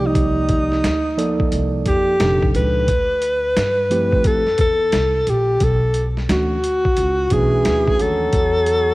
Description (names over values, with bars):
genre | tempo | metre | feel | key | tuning
hip hop, jazz-hop | 88 BPM | 4/4 | swing 65% on 16ths | unclear | A4 = 440 Hz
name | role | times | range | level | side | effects
breathy alto saxophone | melody | 0.0-8.9 s | Eb4 to B4 | -18 LUFS | equal | cassette tape
mellow tine electric piano | accompaniment | 0.0-8.3 s | Bb2 to D5 | -23 LUFS | right 2 dB | cassette tape
upright bass | bass | 0.0-8.9 s | F1 to G2 | -22 LUFS | equal | none
boom bap sampler-style drum kit | drums | 0.2-8.9 s | hi-hat, kick drum, snare drum | -22 LUFS | equal | cassette tape
clear trombone | second line | 7.3-8.9 s | E3 to F#3 | -26 LUFS | left 2 dB | cassette tape
room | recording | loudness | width
small room ambience | home recording on cassette, vinyl crackle | -15 LUFS | side -19 dB against mid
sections
0.0-8.9 A section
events
none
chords
0.0 Cm11; 2.9 Dm11; 5.6 Bm11; 8.3 Esus4